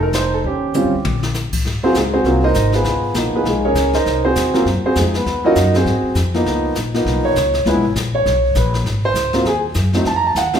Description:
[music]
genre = jazz piano trio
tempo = 200 BPM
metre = 4/4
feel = swing 60% on 8ths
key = Ab mixolydian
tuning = A4 = 440 Hz
[part]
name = warm concert grand piano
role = melody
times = 0.0-10.6 s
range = F3 to Bb5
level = -16 LUFS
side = right 1 dB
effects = none
[part]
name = upright bass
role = bass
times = 0.0-10.6 s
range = F1 to Ab2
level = -20 LUFS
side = left 1 dB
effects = none
[part]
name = jazz brush drum kit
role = drums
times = 0.1-10.6 s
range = brushed snare drum, crash cymbal, hi-hat, kick drum, snare drum, toms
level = -25 LUFS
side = left 3 dB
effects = none
[sound]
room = moderate recital hall reverb, RT60 1.3 s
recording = recorded in a church or concert hall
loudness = -14 LUFS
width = side -8 dB against mid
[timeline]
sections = 0.0-1.6 A section; 1.6-10.6 B section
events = drum fill 0.7-1.3; grand piano solo 1.6-10.6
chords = 0.4 Eb7; 1.6 Ab13; 2.9 Db13; 4.1 Ab13; 5.3 Ebm; 5.9 Ab13; 6.5 Db13; 7.7 N.C.; 8.9 Ab7; 10.1 F7b9

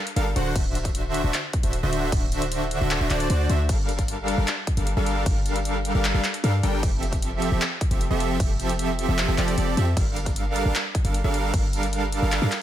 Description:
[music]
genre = future bass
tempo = 153 BPM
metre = 4/4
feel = half-time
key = G dorian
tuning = A4 = 441 Hz
[part]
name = big-room dance drum kit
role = drums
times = 0.1-12.6 s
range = crash cymbal, handclaps, hi-hat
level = -30 LUFS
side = equal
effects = small room ambience
[part]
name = big bright polysynth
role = riff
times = 0.2-12.5 s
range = D3 to G5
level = -26 LUFS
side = right 1 dB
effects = sidechain pumping, ping-pong delay
[part]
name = warm 808-style bass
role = bass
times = 0.2-12.5 s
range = D1 to G2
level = -25 LUFS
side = equal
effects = sidechain pumping
[part]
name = electronic kick drum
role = drums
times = 0.6-11.6 s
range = none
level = -25 LUFS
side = equal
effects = small room ambience
[sound]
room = digital ambience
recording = none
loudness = -21 LUFS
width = side -11 dB against mid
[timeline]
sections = 0.0-12.6 A section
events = none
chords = 0.4 D7; 3.7 Gm7; 6.8 Fmaj7; 10.0 Gm7

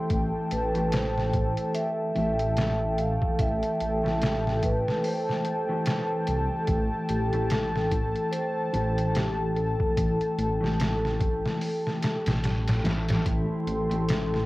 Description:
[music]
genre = trip hop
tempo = 73 BPM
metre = 4/4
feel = swing 58% on 16ths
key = A minor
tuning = A4 = 440 Hz
[part]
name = mellow electric guitar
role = accompaniment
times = 0.0-14.5 s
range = E3 to G4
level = -32 LUFS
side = equal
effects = harmonic tremolo, cassette tape
[part]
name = dark analog pad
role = sustained chords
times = 0.0-14.5 s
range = A4 to C6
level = -31 LUFS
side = equal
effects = chorus, cassette tape
[part]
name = dark detuned saw bass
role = bass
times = 0.1-14.5 s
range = A1 to C2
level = -29 LUFS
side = equal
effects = none
[part]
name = trip hop sampler-style drum kit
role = drums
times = 0.1-14.5 s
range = hi-hat, kick drum, snare drum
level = -29 LUFS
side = equal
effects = studio reverb, cassette tape
[part]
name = vibraphone with medium mallets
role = melody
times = 0.5-14.5 s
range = G4 to F5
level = -32 LUFS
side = equal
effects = vintage 12-bit sampler grit, tape echo
[sound]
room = little or no reverb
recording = home recording on cassette, vinyl crackle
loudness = -24 LUFS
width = side -19 dB against mid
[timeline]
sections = 0.0-13.3 A section; 13.3-14.5 B section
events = kick drops out 11.6-13.3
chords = 0.0 Am7

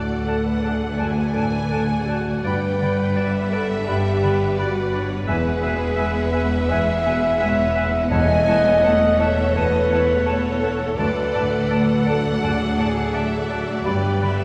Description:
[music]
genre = cinematic, emotional film score for orchestra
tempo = 84 BPM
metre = 4/4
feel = rubato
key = unclear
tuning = A4 = 440 Hz
[part]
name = rich symphonic violin section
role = melody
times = 0.0-14.4 s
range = G#4 to G#5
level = -34 LUFS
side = equal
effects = none
[part]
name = warm clarinet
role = second line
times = 0.0-14.4 s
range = C#5 to E5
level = -34 LUFS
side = equal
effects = none
[part]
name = warm oboe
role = second line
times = 0.0-14.4 s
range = F#5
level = -36 LUFS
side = equal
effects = none
[part]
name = warm symphonic violin section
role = second line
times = 0.0-14.4 s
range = C#5 to G5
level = -36 LUFS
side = equal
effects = none
[part]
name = clear symphonic viola section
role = accompaniment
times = 0.0-14.4 s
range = F#3 to B4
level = -33 LUFS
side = equal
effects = none
[part]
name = felt-muted upright piano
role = accompaniment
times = 0.0-14.4 s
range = D2 to E5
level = -28 LUFS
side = equal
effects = none
[part]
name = mellow French horn section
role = sustained chords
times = 0.0-14.4 s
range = F#4 to E5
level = -25 LUFS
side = equal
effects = none
[part]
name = rich symphonic cello section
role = bass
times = 0.0-14.4 s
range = D2 to G2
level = -29 LUFS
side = equal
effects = none
[part]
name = warm symphonic double bass section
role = bass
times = 0.0-14.4 s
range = E1 to D2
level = -29 LUFS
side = equal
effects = none
[part]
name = bright silver concert flute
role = second line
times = 0.3-14.3 s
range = G#5 to B5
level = -35 LUFS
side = equal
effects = none
[part]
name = timpani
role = percussion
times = 8.1-9.1 s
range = E2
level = -28 LUFS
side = equal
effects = none
[sound]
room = wet scoring stage reverb, RT60 1.7 s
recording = heard from further back in the room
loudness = -20 LUFS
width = mono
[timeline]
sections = 0.0-14.4 A section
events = none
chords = 0.0 D; 2.4 Gmaj7; 5.3 Eadd9; 8.1 A6/E; 11.0 D; 13.9 Gmaj7

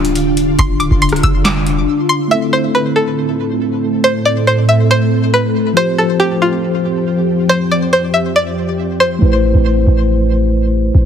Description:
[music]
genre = hip hop, trap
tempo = 139 BPM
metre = 4/4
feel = half-time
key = A minor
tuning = A4 = 440 Hz
[part]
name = string-like resonator pluck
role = melody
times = 0.0-9.2 s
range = F4 to E6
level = -16 LUFS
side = equal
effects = chorus, low-pass filter, ping-pong delay
[part]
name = mellow tine electric piano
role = accompaniment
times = 0.0-11.1 s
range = D3 to C5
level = -18 LUFS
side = left 1 dB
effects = medium stereo tremolo, low-pass filter
[part]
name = ethereal airy pad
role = sustained chords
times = 0.0-9.2 s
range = F2 to A4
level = -17 LUFS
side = equal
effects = ensemble chorus, built-in reverb, phaser
[part]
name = clean 808-style bass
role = bass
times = 0.0-1.9, 9.2-11.1 s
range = D1 to A1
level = -14 LUFS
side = equal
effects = none
[part]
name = booming analog drum machine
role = drums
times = 0.0-1.8 s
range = handclaps, hi-hat, kick drum, rim click, snare drum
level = -16 LUFS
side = equal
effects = none
[sound]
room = light reverb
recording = heavily compressed radio sound, multiband compression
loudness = -11 LUFS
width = side -8 dB against mid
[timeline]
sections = 0.0-2.3 A section; 2.3-9.2 B section; 9.2-11.1 C section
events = silent gap 1.9-2.3; filter sweep 9.2-11.1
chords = 0.0 Dm; 2.3 Am; 5.8 Fsus2; 9.2 Amadd9

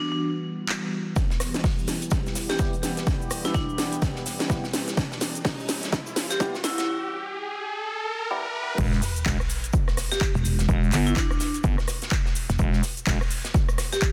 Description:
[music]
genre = bass house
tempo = 126 BPM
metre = 4/4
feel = swing 60% on 16ths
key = E dorian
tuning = A4 = 441 Hz
[part]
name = vibraphone with hard mallets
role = melody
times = 0.0-6.8, 10.1-14.1 s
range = D4 to G4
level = -32 LUFS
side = equal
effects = delay
[part]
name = sweeping resonant pad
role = sustained chords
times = 0.0-6.9 s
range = E3 to G4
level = -35 LUFS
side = equal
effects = chorus, tremolo, sidechain pumping
[part]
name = house drum kit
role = drums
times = 0.7-14.1 s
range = cabasa, crash cymbal, handclaps, hi-hat, rim click, snare drum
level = -32 LUFS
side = equal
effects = overdrive
[part]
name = electronic kick drum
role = drums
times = 1.2-14.1 s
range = none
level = -28 LUFS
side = equal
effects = overdrive
[part]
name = tight metal drum kit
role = drums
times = 1.2-14.1 s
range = hi-hat, shaker, snare drum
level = -40 LUFS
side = equal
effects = sidechain pumping on hats, high-pass filter on hats, high-pass filter on snare, sidechain pumping on perc, high-pass filter on perc, high-pass filter on room
[part]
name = riser and sub drop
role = sound effects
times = 3.3-10.7 s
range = none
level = -35 LUFS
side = equal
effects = none
[part]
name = percussive organ stab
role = stabs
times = 2.6-8.5 s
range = G3 to G4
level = -38 LUFS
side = equal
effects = subtle chorus, sidechain pumping, delay
[part]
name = growling FM bass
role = bass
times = 8.8-13.2 s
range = E1 to G1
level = -26 LUFS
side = equal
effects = overdrive, sidechain pumping
[part]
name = pulsing pluck wobble bass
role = bass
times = 10.4-12.6 s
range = E1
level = -25 LUFS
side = equal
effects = chorus, tube saturation, sidechain pumping
[sound]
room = light reverb, digital ambience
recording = dense, heavily limited modern master, high-pass filter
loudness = -26 LUFS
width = mono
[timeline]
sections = 0.0-1.2 A section; 1.2-8.8 B section; 8.8-14.1 C section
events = filter sweep 0.0-1.2, 1.2-8.8; build-up 1.2-8.8; drum fill 1.2-6.9; filter sweep on synth stab 1.2-8.8; riser 3.3-8.8; drop 8.8-14.1; impact 8.8-10.7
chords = 0.0 Em; 8.8 N.C.

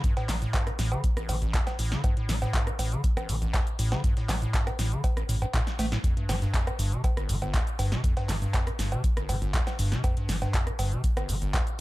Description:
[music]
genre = acid house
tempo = 120 BPM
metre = 4/4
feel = straight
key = A minor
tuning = A4 = 440 Hz
[part]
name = acid bass, square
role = riff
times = 0.0-11.6 s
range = G1 to A3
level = -31 LUFS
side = equal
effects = overdrive, lush chorus, sidechain pumping
[part]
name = breakbeat sampler-style drum kit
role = drums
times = 0.0-11.7 s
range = hi-hat, snare drum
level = -46 LUFS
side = right 1 dB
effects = none
[part]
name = electronic kick drum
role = drums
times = 0.0-11.6 s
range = none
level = -27 LUFS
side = equal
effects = none
[part]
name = punchy analog drum machine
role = drums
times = 0.0-11.8 s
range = cowbell, handclaps, hi-hat, rim click, shaker, snare drum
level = -33 LUFS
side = equal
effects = none
[part]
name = round analog bass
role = bass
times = 0.3-11.5 s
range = G1 to A1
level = -30 LUFS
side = equal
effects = sidechain pumping
[sound]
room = little or no reverb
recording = dark, warm production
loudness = -25 LUFS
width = side -18 dB against mid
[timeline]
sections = 0.0-11.8 A section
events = none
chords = 0.0 A7(no3); 6.0 G7(no3)

